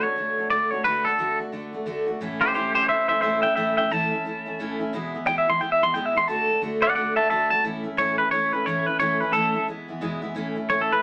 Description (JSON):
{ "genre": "rock", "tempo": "177 BPM", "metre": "4/4", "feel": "swing 61% on 8ths", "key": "A major", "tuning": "A4 = 440 Hz", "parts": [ { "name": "twangy electric guitar", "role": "melody", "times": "0.0-11.0 s", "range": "G4 to C6", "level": "-23 LUFS", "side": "equal", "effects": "none" }, { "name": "picked steel-string acoustic guitar", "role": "accompaniment", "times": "0.0-11.0 s", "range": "E2 to F#4", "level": "-31 LUFS", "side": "equal", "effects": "none" } ], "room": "moderate studio reverb, RT60 0.6 s", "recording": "none", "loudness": "-24 LUFS", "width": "mono", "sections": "0.0-10.4 A section", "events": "clean electric guitar solo 0.0-10.4", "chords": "0.0 D; 2.2 A; 4.9 E; 6.3 D; 7.6 A; 9.7 E; 10.4 A", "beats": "0.17 0.51 | 0.84 1.19 1.52 1.86 | 2.21 2.55 2.89 3.23 | 3.57 3.91 4.25 4.58 | 4.92 5.26 5.61 5.94 | 6.28 6.62 6.96 7.30 | 7.64 7.98 8.32 8.66 | 9.00 9.34 9.68 10.02 | 10.36 10.70" }